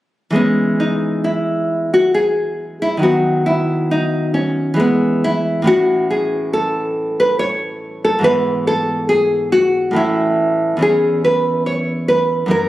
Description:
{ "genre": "classical, baroque-style dance for nylon-string guitar", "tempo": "69 BPM", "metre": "3/4", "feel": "rubato", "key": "E major", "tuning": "A4 = 440 Hz", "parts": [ { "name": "nylon-string guitar", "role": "solo", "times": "0.3-12.7 s", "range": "E2 to C#5", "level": "-14 LUFS", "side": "equal", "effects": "none" } ], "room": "moderate recital hall reverb, RT60 1.7 s", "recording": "recorded on a phone in the room, studio ambience", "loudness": "-14 LUFS", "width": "side -15 dB against mid", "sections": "0.4-12.7 A section", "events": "none", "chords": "0.4 E; 3.0 B/D#; 4.8 E; 5.7 A; 8.3 E/G#; 10.0 A; 10.8 C#m/E", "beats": "| 0.36 1.26 2.15 | 3.04 3.92 4.81 | 5.68 6.55 7.42 | 8.27 9.12 9.98 | 10.83 11.67 12.52" }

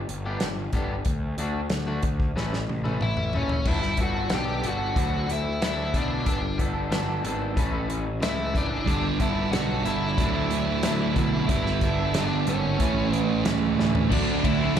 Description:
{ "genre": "quiet-loud alternative rock", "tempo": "92 BPM", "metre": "4/4", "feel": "straight", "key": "D major", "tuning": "A4 = 440 Hz", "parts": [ { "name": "fuzz picked electric bass", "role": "bass", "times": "0.0-14.8 s", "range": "F#1 to B2", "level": "-29 LUFS", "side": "left 1 dB", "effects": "overdrive" }, { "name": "loose indie drum kit", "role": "drums", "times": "0.1-14.8 s", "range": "crash cymbal, hi-hat, kick drum, ride cymbal, snare drum, toms", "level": "-28 LUFS", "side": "equal", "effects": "none" }, { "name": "electric guitar at the edge of break-up", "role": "arpeggios", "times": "0.3-14.1 s", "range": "A2 to A4", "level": "-31 LUFS", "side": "left 2 dB", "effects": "vibrato effect, slapback echo" }, { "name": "bluesy overdriven lead guitar", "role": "melody", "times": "3.0-14.8 s", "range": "C#4 to G5", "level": "-30 LUFS", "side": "left 2 dB", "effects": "distortion, slapback echo, analog delay" }, { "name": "thick fuzz guitar", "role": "riff", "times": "8.9-14.8 s", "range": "G2 to F#4", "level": "-25 LUFS", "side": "right 9 dB", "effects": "distortion, slapback echo" }, { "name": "string machine, cellos", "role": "sustained chords", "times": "14.1-14.8 s", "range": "F#4 to A5", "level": "-38 LUFS", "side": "left 1 dB", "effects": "none" }, { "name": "thick fuzz guitar", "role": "riff", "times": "14.1-14.8 s", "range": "D3 to F#4", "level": "-28 LUFS", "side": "left 9 dB", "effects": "distortion, slapback echo" } ], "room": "small room ambience", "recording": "live gig heard through the venue's PA, club reverb", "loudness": "-23 LUFS", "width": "side -9 dB against mid", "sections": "0.0-3.7 A section; 3.7-14.1 B section", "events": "drum fill 2.4-3.7, 13.8-14.1", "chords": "0.0 G; 1.1 D; 2.4 A; 3.7 Gadd9; 5.0 Dadd9; 6.3 Gadd9; 7.6 A; 8.9 Gadd9; 10.2 Dadd9; 11.5 Gadd9; 12.8 A; 14.1 D", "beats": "0.41 | 1.06 1.71 2.36 3.01 | 3.66 4.31 4.96 5.62 | 6.27 6.92 7.57 8.22 | 8.88 9.53 10.19 10.84 | 11.49 12.15 12.80 13.46 | 14.11 14.77" }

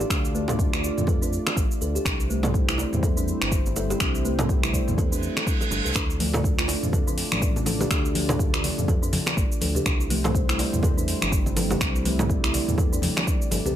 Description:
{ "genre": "afro house", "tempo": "123 BPM", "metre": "4/4", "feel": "swing 58% on 16ths", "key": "unclear", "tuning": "A4 = 438 Hz", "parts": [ { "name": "warm analog pad", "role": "sustained chords", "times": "0.0-13.8 s", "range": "G3 to D5", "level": "-32 LUFS", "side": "right 1 dB", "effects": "chorus, sidechain pumping" }, { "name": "kalimba", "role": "arpeggios", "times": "0.0-13.7 s", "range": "A3 to D5", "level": "-30 LUFS", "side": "equal", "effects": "sidechain pumping, ping-pong delay" }, { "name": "smooth synth bass", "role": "bass", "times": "0.0-13.7 s", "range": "G1 to F2", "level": "-29 LUFS", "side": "equal", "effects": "sidechain pumping" }, { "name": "deep house drum kit", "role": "drums", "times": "0.0-13.7 s", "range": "cabasa, finger snaps, hi-hat, toms", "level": "-28 LUFS", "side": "equal", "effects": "overdrive" }, { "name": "electronic kick drum", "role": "drums", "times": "0.1-13.4 s", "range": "none", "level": "-25 LUFS", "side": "equal", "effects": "none" }, { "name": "bongos", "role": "percussion", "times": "0.5-13.6 s", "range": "none", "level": "-32 LUFS", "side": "right 2 dB", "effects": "none" }, { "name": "reverse cymbal", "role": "sound effects", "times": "5.2-6.0 s", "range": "none", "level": "-31 LUFS", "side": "right 5 dB", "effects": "none" }, { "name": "congas", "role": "percussion", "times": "6.2-13.7 s", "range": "none", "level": "-32 LUFS", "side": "left 2 dB", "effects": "none" } ], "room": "digital ambience", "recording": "none", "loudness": "-21 LUFS", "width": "side -11 dB against mid", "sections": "0.0-13.8 A section", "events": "reverse cymbal 5.2-6.0", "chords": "0.0 Dm; 2.1 C; 6.0 Dm; 9.9 C", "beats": "| 0.10 0.59 1.08 1.56 | 2.05 2.54 3.03 3.52 | 4.00 4.49 4.98 5.47 | 5.96 6.44 6.93 7.42 | 7.91 8.39 8.88 9.37 | 9.86 10.35 10.83 11.32 | 11.81 12.30 12.79 13.27" }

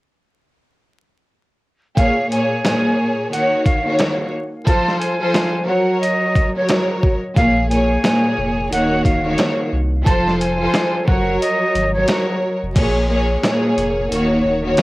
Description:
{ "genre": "hip hop, boom-bap hip-hop", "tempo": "89 BPM", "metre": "4/4", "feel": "swing 61% on 16ths", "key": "Bb minor", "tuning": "A4 = 440 Hz", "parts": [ { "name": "breathy concert flute", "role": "melody", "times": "2.0-12.1 s", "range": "Db5 to A5", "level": "-22 LUFS", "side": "right 1 dB", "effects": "high-pass filter, low-pass filter, analog delay" }, { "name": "warm studio string section", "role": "accompaniment", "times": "2.0-14.8 s", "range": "Bb2 to Db5", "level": "-18 LUFS", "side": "equal", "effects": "high-pass filter, low-pass filter, cassette tape" }, { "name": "dusty soul sampler-style drum kit", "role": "drums", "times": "2.0-14.8 s", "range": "crash cymbal, hi-hat, kick drum, snare drum", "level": "-19 LUFS", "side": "equal", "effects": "none" }, { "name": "warm sub bass", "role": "bass", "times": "7.4-14.7 s", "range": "Eb1 to C2", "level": "-22 LUFS", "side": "equal", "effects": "tube saturation" } ], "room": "little or no reverb", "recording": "home recording on cassette, vinyl crackle", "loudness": "-15 LUFS", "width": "side -19 dB against mid", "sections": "2.0-12.8 A section; 12.8-14.8 B section", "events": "kick muted 11.4-12.8", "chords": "2.0 Bbm7; 3.3 Ebm7; 4.7 F; 5.7 Gb; 7.4 Bbm7; 8.7 Ebm7; 10.1 F; 11.1 Gb; 12.8 Bbm7; 14.1 Ebm7", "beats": "| 1.97 2.65 3.32 3.99 | 4.67 5.34 6.01 6.69 | 7.36 8.04 8.71 9.39 | 10.06 10.73 11.41 12.08 | 12.76 13.43 14.11 14.78" }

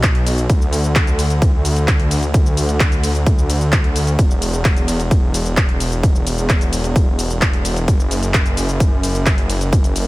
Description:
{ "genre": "EDM, festival progressive house", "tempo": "130 BPM", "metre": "4/4", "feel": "straight", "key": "B minor", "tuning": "A4 = 440 Hz", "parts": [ { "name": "detuned saw bass", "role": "bass", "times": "0.0-10.1 s", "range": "E1 to D2", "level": "-18 LUFS", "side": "equal", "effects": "sidechain pumping" }, { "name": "big-room dance drum kit", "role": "drums", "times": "0.0-10.1 s", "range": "handclaps, hi-hat, ride cymbal, shaker", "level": "-22 LUFS", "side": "equal", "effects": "none" }, { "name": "electronic kick drum", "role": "drums", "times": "0.0-9.8 s", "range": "none", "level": "-15 LUFS", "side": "equal", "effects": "overdrive" } ], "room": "little or no reverb", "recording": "none", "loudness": "-14 LUFS", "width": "side -19 dB against mid", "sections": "0.0-10.1 A section", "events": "none", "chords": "none", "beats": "0.03 | 0.50 0.96 1.42 1.88 | 2.34 2.80 3.27 3.73 | 4.19 4.65 5.11 5.57 | 6.03 6.50 6.96 7.42 | 7.88 8.34 8.80 9.27 | 9.73" }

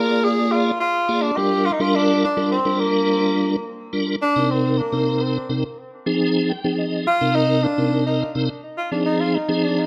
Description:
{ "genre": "progressive instrumental, progressive", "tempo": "211 BPM (eighths)", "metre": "5/8", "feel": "straight", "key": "C minor", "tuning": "A4 = 436 Hz", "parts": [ { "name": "clear tenor saxophone", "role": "melody", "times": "0.0-9.9 s", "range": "Bb3 to Bb4", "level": "-24 LUFS", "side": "equal", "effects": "plate reverb, tape echo" }, { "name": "tonewheel organ", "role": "accompaniment", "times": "0.0-9.9 s", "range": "C3 to G5", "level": "-22 LUFS", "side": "equal", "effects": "overdrive, chorus vibrato, slow rotary speaker, plate reverb" } ], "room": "wet small room reverb, RT60 0.5 s", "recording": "rough home demo mix", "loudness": "-20 LUFS", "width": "mono", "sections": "0.0-4.2 A section; 4.2-9.9 B section", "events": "tenor saxophone solo 4.2-9.9; tonewheel organ fill 6.2-7.1", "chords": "0.0 Bb7; 1.4 Gm7; 4.2 Cm7; 5.6 Fm7; 7.1 Cm7; 8.5 Fm7", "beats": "0.23 0.51 0.80 1.08 | 1.37 1.65 1.94 2.22 2.51 | 2.79 3.08 3.36 3.65 3.93 | 4.21 4.50 4.79 5.07 5.36 | 5.64 5.92 6.21 6.50 6.78 | 7.07 7.35 7.63 7.92 8.21 | 8.49 8.78 9.06 9.35 9.63" }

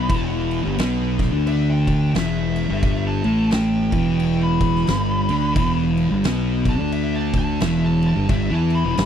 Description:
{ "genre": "stoner and doom metal", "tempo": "88 BPM", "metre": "4/4", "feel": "swing 60% on 8ths", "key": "E minor", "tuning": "A4 = 441 Hz", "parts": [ { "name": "fuzz lead guitar", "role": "melody", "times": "0.0-9.1 s", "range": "E5 to B5", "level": "-29 LUFS", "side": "left 1 dB", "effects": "distortion, tape echo" }, { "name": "thick fuzz guitar", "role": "riff", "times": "0.0-9.1 s", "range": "E2 to E4", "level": "-23 LUFS", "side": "left 8 dB", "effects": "distortion" }, { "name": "thick fuzz guitar", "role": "riff", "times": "0.0-9.1 s", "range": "E2 to E4", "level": "-24 LUFS", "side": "right 11 dB", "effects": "distortion" }, { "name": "fuzz fingered electric bass", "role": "bass", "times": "0.0-9.1 s", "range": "E1 to E2", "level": "-23 LUFS", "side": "equal", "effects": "overdrive" }, { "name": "oversized low-tuned drum kit", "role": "drums", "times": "0.1-9.1 s", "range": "crash cymbal, kick drum, snare drum", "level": "-26 LUFS", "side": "equal", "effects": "none" } ], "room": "small room ambience", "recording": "dry, close 1970s-style studio recording", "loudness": "-17 LUFS", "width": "side -9 dB against mid", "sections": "0.0-9.1 A section", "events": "lead electric guitar solo 0.0-9.1", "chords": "0.0 Em", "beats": "| 0.10 0.78 1.46 2.14 | 2.83 3.51 4.19 4.88 | 5.56 6.24 6.93 7.61 | 8.30 8.98" }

